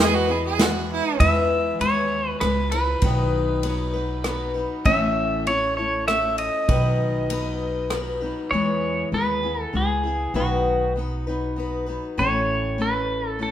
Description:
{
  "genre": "honky-tonk and classic country",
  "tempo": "98 BPM",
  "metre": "3/4",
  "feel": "straight",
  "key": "E major",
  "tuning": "A4 = 441 Hz",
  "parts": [
    { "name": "pedal steel guitar", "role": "melody", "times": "0.0-13.5 s", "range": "F#4 to E5", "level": "-24 LUFS", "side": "right 1 dB", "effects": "none" },
    { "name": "clear fiddle", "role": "second line", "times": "0.0-1.2 s", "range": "E4 to G#4", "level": "-24 LUFS", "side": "right 7 dB", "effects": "none" },
    { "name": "picked steel-string acoustic guitar", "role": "accompaniment", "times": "0.0-13.5 s", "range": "A2 to B4", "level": "-25 LUFS", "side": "left 4 dB", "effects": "none" },
    { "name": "upright bass", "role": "bass", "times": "0.0-13.5 s", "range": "A1 to E2", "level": "-27 LUFS", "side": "right 1 dB", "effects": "none" },
    { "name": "unplugged drum kit", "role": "drums", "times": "0.6-8.0 s", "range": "kick drum, ride cymbal, rim click, snare drum", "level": "-26 LUFS", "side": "right 1 dB", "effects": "none" }
  ],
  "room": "moderate large studio reverb, RT60 1.4 s",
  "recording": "minimal, uncompressed stereo recording",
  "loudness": "-20 LUFS",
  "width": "side -11 dB against mid",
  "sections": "0.0-1.2 A section; 1.2-8.5 B section; 8.5-13.5 C section",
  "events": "none",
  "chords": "0.0 E; 3.0 B; 4.9 A; 6.7 B; 8.5 E; 10.4 B; 12.2 A"
}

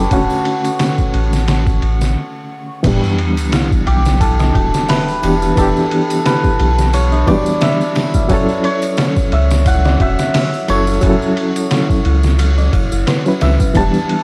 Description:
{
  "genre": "trip hop",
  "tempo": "88 BPM",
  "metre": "4/4",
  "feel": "swing 56% on 16ths",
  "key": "E dorian",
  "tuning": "A4 = 441 Hz",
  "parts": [
    { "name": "hammered dulcimer", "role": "melody", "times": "0.0-14.2 s", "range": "F#4 to A5", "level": "-22 LUFS", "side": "equal", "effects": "tape echo" },
    { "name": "barky reed electric piano", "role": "accompaniment", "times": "0.0-14.2 s", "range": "D3 to B4", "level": "-21 LUFS", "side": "equal", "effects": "overdrive, fast tremolo, harmonic tremolo, vintage 12-bit sampler grit" },
    { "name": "soft dub sub bass", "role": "bass", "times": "0.0-13.9 s", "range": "D1 to C#2", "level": "-17 LUFS", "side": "equal", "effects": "none" },
    { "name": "backwards swelling texture", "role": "texture", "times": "0.1-2.2, 13.8-14.2 s", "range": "C#6", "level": "-40 LUFS", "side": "equal", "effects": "none" },
    { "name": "trip hop sampler-style drum kit", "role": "drums", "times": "0.1-14.2 s", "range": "crash cymbal, hi-hat, kick drum, ride cymbal, snare drum", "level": "-20 LUFS", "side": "equal", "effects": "overdrive, small room ambience" },
    { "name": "tambourine and triangle", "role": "percussion", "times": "0.1-14.1 s", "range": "none", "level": "-38 LUFS", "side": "equal", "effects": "none" },
    { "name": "sub drop", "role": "sound effects", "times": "2.8-5.6 s", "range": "none", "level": "-24 LUFS", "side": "equal", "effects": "none" },
    { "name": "dark detuned synth bell", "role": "arpeggios", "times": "3.5-13.8 s", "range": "C#4 to E5", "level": "-28 LUFS", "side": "equal", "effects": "chorus, tape echo" }
  ],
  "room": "little or no reverb",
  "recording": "dry, gritty hardware recording, cassette tape",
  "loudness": "-15 LUFS",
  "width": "mono",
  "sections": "0.0-2.8 A section; 2.8-14.2 B section",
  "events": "stop 2.2-2.8; impact 2.8-5.6",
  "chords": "0.1 Dmaj7; 2.8 Em7; 8.3 F#m7"
}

